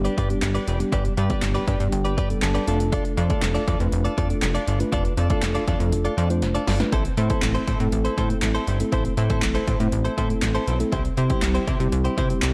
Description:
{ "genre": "dance-pop", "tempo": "120 BPM", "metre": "4/4", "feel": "straight", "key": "unclear", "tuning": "A4 = 436 Hz", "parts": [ { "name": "mellow tine electric piano", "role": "accompaniment", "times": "0.0-12.5 s", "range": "G3 to A5", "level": "-30 LUFS", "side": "equal", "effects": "sidechain pumping" }, { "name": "direct-recorded clean electric guitar", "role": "riff", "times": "0.0-12.5 s", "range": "C4 to D5", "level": "-31 LUFS", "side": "equal", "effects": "analog chorus" }, { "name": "plucky analog bass", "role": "bass", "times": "0.0-12.5 s", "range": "F1 to C3", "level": "-26 LUFS", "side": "equal", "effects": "sidechain pumping" }, { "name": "punchy analog drum machine", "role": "drums", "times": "0.0-12.5 s", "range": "handclaps, hi-hat, kick drum, snare drum", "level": "-28 LUFS", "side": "equal", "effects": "overdrive" } ], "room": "light reverb", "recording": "dark, warm production", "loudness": "-23 LUFS", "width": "mono", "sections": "0.0-12.5 A section", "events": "tine electric piano fill 1.4-2.9; drum fill 6.4-6.9", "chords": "0.0 G; 2.7 Dm/F; 6.9 Am; 10.9 C", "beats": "0.42 | 0.93 1.43 1.93 2.42 | 2.92 3.42 3.92 4.42 | 4.92 5.42 5.92 6.42 | 6.92 7.42 7.92 8.43 | 8.93 9.43 9.93 10.43 | 10.93 11.43 11.93 12.43" }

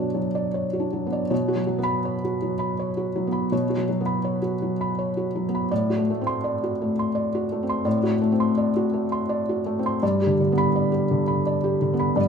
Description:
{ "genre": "neoclassical minimalist piano", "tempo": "83 BPM", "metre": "3/4", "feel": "rubato", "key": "B minor", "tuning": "A4 = 439 Hz", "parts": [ { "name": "felt-muted upright piano", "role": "solo", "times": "0.0-12.3 s", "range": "G2 to C6", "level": "-21 LUFS", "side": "equal", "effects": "none" } ], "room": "moderate scoring stage reverb, RT60 1.7 s", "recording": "minimal, uncompressed stereo recording", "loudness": "-21 LUFS", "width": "side -6 dB against mid", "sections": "0.0-1.3 A section; 1.3-12.3 A section", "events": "none", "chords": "0.0 Bmadd9; 1.3 Bsus2; 5.7 D7/A; 10.0 G", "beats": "0.54 | 1.31 2.05 2.79 | 3.52 4.26 4.98 | 5.70 6.43 7.14 | 7.86 8.57 9.29 | 10.02 10.75 11.46 | 12.19" }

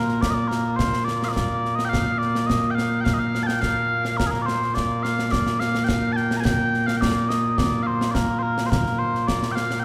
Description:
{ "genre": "scottish traditional, Scottish pipe music", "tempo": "106 BPM", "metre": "4/4", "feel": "straight", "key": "Bb major", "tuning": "A4 = 440 Hz", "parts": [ { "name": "mellow small bagpipes", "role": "melody", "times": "0.0-9.8 s", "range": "Bb2 to Bb5", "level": "-24 LUFS", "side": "equal", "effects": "none" }, { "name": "concert snare drum and concert bass drum", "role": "drums", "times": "0.1-9.8 s", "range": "none", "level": "-29 LUFS", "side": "equal", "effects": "none" } ], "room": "wet concert hall reverb, RT60 2.1 s", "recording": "recorded in a church or concert hall", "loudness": "-23 LUFS", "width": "mono", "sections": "0.0-9.8 A section", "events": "none", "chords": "none", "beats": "0.23 0.80 1.36 | 1.93 2.49 3.06 3.63 | 4.19 4.76 5.32 5.89 | 6.46 7.02 7.59 8.15 | 8.72 9.29" }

